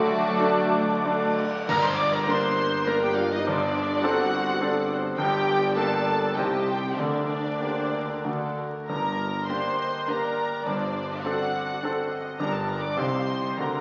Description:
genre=classical, romantic movement for piano and orchestra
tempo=89-107 BPM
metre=3/4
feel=rubato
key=G minor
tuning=A4 = 442 Hz
part: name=clear concert grand piano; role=melody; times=0.0-13.8 s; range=G1 to D5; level=-30 LUFS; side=equal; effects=none
part: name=warm symphonic violin section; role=melody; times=0.0-13.8 s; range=D5 to D6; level=-32 LUFS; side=equal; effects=none
part: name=dark clarinet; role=second line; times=0.0-1.3 s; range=none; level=barely audible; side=none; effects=none
part: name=mellow cor anglais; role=second line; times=0.0-1.3 s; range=D4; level=-33 LUFS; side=equal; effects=none
part: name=mellow large flute ensemble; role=second line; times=0.0-1.3 s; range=A5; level=-33 LUFS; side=equal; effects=none
part: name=warm symphonic violin section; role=second line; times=0.0-13.8 s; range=F#4 to F5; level=-39 LUFS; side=equal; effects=none
part: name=rich symphonic viola section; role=accompaniment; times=0.0-13.8 s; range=A3 to D5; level=-33 LUFS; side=equal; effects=none
part: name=warm bassoon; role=accompaniment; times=0.0-1.3 s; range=A3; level=-34 LUFS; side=equal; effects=none
part: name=mellow French horn section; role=sustained chords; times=0.0-1.4 s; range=F#3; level=-36 LUFS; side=equal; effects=none
part: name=mellow trumpet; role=stabs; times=0.0-1.3 s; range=A3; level=-33 LUFS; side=equal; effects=none
part: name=dark symphonic cello section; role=bass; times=0.0-13.8 s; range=G2 to F#3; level=-42 LUFS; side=equal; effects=none
part: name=mellow tuba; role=bass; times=0.0-13.8 s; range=G1 to D2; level=-37 LUFS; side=equal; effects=none
part: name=warm studio double bass section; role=bass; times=0.0-13.8 s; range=G1 to D2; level=-43 LUFS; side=equal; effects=none
part: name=clash cymbals and concert bass drum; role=percussion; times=1.7-2.8 s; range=none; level=-38 LUFS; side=equal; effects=none
room=wet scoring stage reverb, RT60 1.6 s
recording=very old 78 rpm record, vinyl crackle, nothing above 7.7 kHz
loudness=-26 LUFS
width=mono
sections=0.0-1.7 A section; 1.7-13.8 B section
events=band accent 1.7-2.3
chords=0.0 D; 1.7 Gm; 3.5 D7/G; 5.2 Gm; 6.4 Cm; 7.0 Gm/D; 8.9 Gm; 10.7 D7/G; 12.4 G5; 13.0 Cm

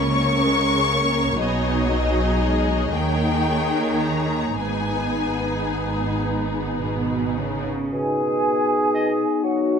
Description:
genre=classical, slow romantic movement for symphony orchestra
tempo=35-41 BPM (dotted quarters)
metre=6/8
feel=rubato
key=G# minor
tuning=A4 = 440 Hz
part: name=warm symphonic violin section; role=melody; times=0.0-6.2 s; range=D#5 to C#6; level=-25 LUFS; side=left 5 dB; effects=none
part: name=warm symphonic violin section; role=second line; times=0.0-7.7 s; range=G#4 to C#5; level=-28 LUFS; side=left 2 dB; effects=none
part: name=warm symphonic viola section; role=accompaniment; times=0.0-7.7 s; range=F#3 to D#4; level=-25 LUFS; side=equal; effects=none
part: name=rich symphonic cello section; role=bass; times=0.0-7.9 s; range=G#2 to D#3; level=-27 LUFS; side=right 3 dB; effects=none
part: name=rich symphonic double bass section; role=bass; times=0.0-7.7 s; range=G#1 to D#2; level=-27 LUFS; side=right 2 dB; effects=none
part: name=dark clarinet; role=second line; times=7.9-9.8 s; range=F#4 to G#4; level=-24 LUFS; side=right 1 dB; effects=none
part: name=mellow flute section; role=second line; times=7.9-9.8 s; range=F#5 to G#5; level=-25 LUFS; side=right 1 dB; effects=none
part: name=dark bassoon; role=accompaniment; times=7.9-9.8 s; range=B2 to F#3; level=-25 LUFS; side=right 2 dB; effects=none
part: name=dark French horn section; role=sustained chords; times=7.9-9.8 s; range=B3 to D#4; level=-24 LUFS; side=left 6 dB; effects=none
part: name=clear oboe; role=second line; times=8.9-9.1 s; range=D#5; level=-33 LUFS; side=equal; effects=none
room=moderate concert hall reverb, RT60 1.9 s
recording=close, detailed microphones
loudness=-19 LUFS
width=side -6 dB against mid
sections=0.0-7.9 A section; 7.9-9.8 B section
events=none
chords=0.0 D#7(no3)/C# (rootless); 1.4 G#m/B; 2.9 D#7; 4.6 G#m; 7.9 B

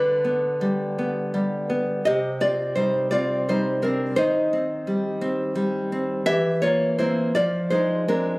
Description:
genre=romantic piece for solo classical guitar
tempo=54-58 BPM (dotted quarters)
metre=6/8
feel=rubato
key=C minor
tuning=A4 = 441 Hz
part: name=nylon-string guitar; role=solo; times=0.0-8.4 s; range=C3 to E5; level=-20 LUFS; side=equal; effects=none
room=moderate concert hall reverb, RT60 2.0 s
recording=recorded on a phone in the room, club reverb, compression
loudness=-21 LUFS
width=side -24 dB against mid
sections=0.0-8.4 A section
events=none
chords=0.0 G/D; 2.0 Cm; 4.2 Cm/Eb; 6.2 C7/E; 7.3 Fm

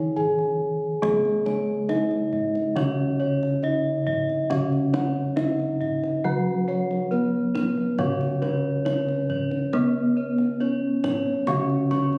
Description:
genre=Javanese gamelan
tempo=69 BPM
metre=4/4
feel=straight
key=C# slendro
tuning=A4 = 440 Hz
part: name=gamelan-type bronze metallophone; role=melody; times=0.0-12.2 s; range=B3-40c to G#4+20c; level=-28 LUFS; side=equal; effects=slapback echo
part: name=gamelan-type bronze metallophone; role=accompaniment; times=0.0-12.2 s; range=C#3 to B3-40c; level=-30 LUFS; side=equal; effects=none
part: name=gamelan-type bossed gongs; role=arpeggios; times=0.0-12.2 s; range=B4-40c to C#6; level=-35 LUFS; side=equal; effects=none
part: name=gamelan-type bossed gongs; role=bass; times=0.0-12.2 s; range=C#2 to G#4+20c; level=-36 LUFS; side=equal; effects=none
part: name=kendang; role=percussion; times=0.2-12.2 s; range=none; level=-36 LUFS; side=equal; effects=none
part: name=gamelan-type bronze metallophone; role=arpeggios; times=1.0-12.2 s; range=B4-40c to G#5+20c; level=-33 LUFS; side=equal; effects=none
room=wet recital hall reverb, RT60 1.3 s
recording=recorded on a phone in the room, club reverb, compression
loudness=-24 LUFS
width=mono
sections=0.0-1.0 A section; 1.0-12.2 B section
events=none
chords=none

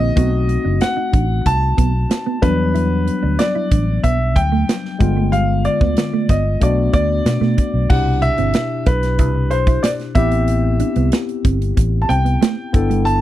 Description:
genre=polished 1980s jazz-funk pop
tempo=93 BPM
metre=4/4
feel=straight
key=unclear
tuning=A4 = 441 Hz
part: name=warm grand piano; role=melody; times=0.0-13.2 s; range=B4 to A5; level=-21 LUFS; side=equal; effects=none
part: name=barky tine electric piano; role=accompaniment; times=0.0-13.2 s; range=B2 to A4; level=-22 LUFS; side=left 5 dB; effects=overdrive, wide subtle chorus
part: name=mellow electric guitar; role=riff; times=0.0-13.0 s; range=G3 to E4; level=-23 LUFS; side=right 7 dB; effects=wide subtle chorus
part: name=fingered electric bass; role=bass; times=0.0-13.2 s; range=F#1 to B2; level=-18 LUFS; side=equal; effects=none
part: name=modern studio drum kit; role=drums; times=0.2-13.2 s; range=crash cymbal, hi-hat, kick drum, snare drum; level=-17 LUFS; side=equal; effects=none
room=little or no reverb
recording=dry, close 1970s-style studio recording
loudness=-14 LUFS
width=side -13 dB against mid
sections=0.0-7.9 A section; 7.9-13.2 B section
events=none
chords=0.2 B7b9; 2.4 Em9; 5.0 G7b9; 6.6 Bm7; 7.9 Cmaj7; 10.2 Am7

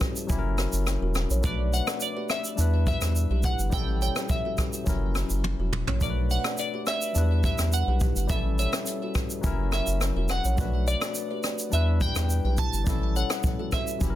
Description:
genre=afrobeats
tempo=105 BPM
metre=4/4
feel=straight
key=B minor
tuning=A4 = 439 Hz
part: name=glassy wavetable pluck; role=melody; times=0.0-14.2 s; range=D5 to A5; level=-32 LUFS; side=right 1 dB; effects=chorus, digital delay
part: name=barky tine electric piano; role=accompaniment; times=0.0-14.2 s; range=F#3 to B4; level=-33 LUFS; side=left 7 dB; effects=none
part: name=kalimba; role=riff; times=0.0-13.8 s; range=E4 to E5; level=-38 LUFS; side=right 4 dB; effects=digital delay
part: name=jazz brush drum kit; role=drums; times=0.0-14.1 s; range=hi-hat, kick drum, rim click, shaker, toms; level=-29 LUFS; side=equal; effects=soft clipping on snare
part: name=round analog bass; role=bass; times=0.3-14.2 s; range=E1 to E2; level=-25 LUFS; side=equal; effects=none
room=little or no reverb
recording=dense, heavily limited modern master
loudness=-24 LUFS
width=side -13 dB against mid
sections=0.0-14.2 A section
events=drum fill 5.4-6.0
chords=0.3 F#7; 1.4 Bm7; 2.6 Em7; 3.7 A7; 4.9 F#7; 6.0 Bm7; 7.2 Em7; 8.3 A7; 9.4 F#7; 10.6 Bm7; 11.7 Em7; 12.9 A7

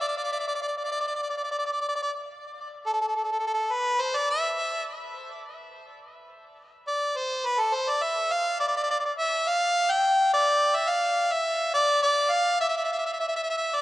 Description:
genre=calypso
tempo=105 BPM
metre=4/4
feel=straight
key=unclear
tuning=A4 = 439 Hz
part: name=bright harmonica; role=solo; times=0.0-13.8 s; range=A4 to G5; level=-24 LUFS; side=equal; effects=tape echo
room=moderate concert hall reverb, RT60 2.1 s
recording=worn, warbling old tape, cassette tape, warbly pitch drift, nothing above 11.0 kHz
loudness=-23 LUFS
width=side -16 dB against mid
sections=0.0-2.6 A section; 2.6-11.7 B section; 11.7-13.8 A section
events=harmonica solo 2.6-11.7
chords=none

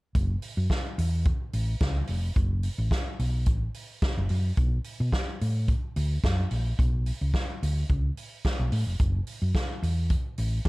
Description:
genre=disco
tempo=109 BPM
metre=4/4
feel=straight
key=F# minor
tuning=A4 = 440 Hz
part: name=hollow-body short-scale fingered electric bass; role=bass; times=0.1-10.7 s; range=E#1 to B2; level=-26 LUFS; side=equal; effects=none
part: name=vintage drum kit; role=drums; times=0.1-10.7 s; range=hi-hat, kick drum, snare drum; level=-28 LUFS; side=equal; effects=none
room=little or no reverb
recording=dark, warm production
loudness=-25 LUFS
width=side -22 dB against mid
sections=0.2-10.7 A section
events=none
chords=none

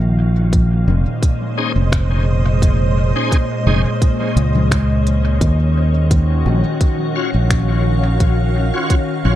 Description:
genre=ambient dub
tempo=86 BPM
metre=4/4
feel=swing 53% on 16ths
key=Bb minor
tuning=A4 = 440 Hz
part: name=soft additive organ-like pad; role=sustained chords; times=0.0-9.4 s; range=Bb2 to F5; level=-20 LUFS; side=equal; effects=ensemble chorus, built-in reverb
part: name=fingered electric bass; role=bass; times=0.0-9.4 s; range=F1 to Eb2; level=-15 LUFS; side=equal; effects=none
part: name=electronic kick drum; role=drums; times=0.5-9.1 s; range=none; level=-15 LUFS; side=equal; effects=none
part: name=organic electronic drum kit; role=drums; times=0.5-9.4 s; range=congas, finger snaps, hi-hat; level=-25 LUFS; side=left 3 dB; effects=dub echo
part: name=bright tonewheel organ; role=stabs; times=1.6-9.4 s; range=Db4 to Db5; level=-25 LUFS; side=left 1 dB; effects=overdrive, chorus vibrato, slow rotary speaker, dub echo
room=digital ambience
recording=dark, warm production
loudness=-14 LUFS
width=side -13 dB against mid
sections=0.0-9.4 A section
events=none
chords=0.0 Bbm11; 5.4 Ebm9

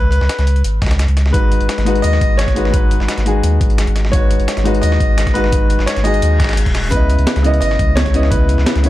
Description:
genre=liquid drum and bass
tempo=172 BPM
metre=4/4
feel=straight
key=unclear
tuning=A4 = 437 Hz
part: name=bright concert grand piano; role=melody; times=0.0-8.9 s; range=B4 to D#5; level=-22 LUFS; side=equal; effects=dub echo
part: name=warm sub bass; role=bass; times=0.0-8.9 s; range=D#1 to D#2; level=-15 LUFS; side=equal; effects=none
part: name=breakbeat sampler-style drum kit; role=drums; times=0.1-8.9 s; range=hi-hat, snare drum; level=-25 LUFS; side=equal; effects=none
part: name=dusty soul sampler-style drum kit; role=drums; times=0.1-8.9 s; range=hi-hat, snare drum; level=-26 LUFS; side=equal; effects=high-pass filter on hats, high-pass filter on snare
part: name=electronic kick drum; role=drums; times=0.8-8.4 s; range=none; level=-16 LUFS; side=equal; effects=none
part: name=clear grand piano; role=accompaniment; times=1.3-8.9 s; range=C#3 to D#5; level=-19 LUFS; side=left 3 dB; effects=none
part: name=reverse cymbal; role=sound effects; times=6.3-6.9 s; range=none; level=-26 LUFS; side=left 2 dB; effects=none
room=little or no reverb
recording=dark, warm production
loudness=-12 LUFS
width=side -15 dB against mid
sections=0.0-8.9 A section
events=reverse cymbal 6.3-6.9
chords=0.0 C#7(no3); 1.3 G#m7; 6.9 C#m9

